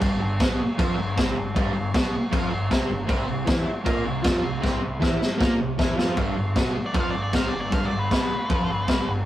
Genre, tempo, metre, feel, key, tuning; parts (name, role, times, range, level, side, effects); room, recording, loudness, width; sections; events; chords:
garage rock duo or trio; 156 BPM; 4/4; straight; G mixolydian; A4 = 440 Hz
fuzz guitar; riff; 0.0-9.2 s; G2 to Bb4; -27 LUFS; equal; distortion
growling picked electric bass; bass; 0.0-9.3 s; G1 to Bb2; -30 LUFS; equal; overdrive
vintage drum kit; drums; 0.0-9.0 s; crash cymbal, kick drum, snare drum; -24 LUFS; equal
octave-fuzz lead guitar; melody; 6.9-9.1 s; B4 to F5; -29 LUFS; left 1 dB; distortion
moderate small room reverb, RT60 0.5 s; rough rehearsal-room recording; -21 LUFS; side -14 dB against mid
0.0-6.2 A section; 6.2-9.3 B section
drum fill 4.6-6.2; lead electric guitar solo 6.2-9.3
0.0 G; 3.1 Cadd11; 6.2 G